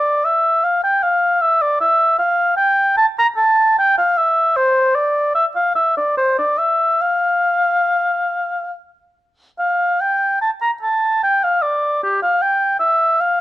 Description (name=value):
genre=classical, baroque-style fantasia for unaccompanied oboe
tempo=68-79 BPM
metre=3/4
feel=rubato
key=F major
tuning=A4 = 441 Hz
part: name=mellow oboe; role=solo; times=0.0-13.4 s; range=G4 to Bb5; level=-14 LUFS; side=equal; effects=none
room=light reverb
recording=dark, warm production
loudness=-14 LUFS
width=side -16 dB against mid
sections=0.0-9.6 A section; 9.6-13.4 B section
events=none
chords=none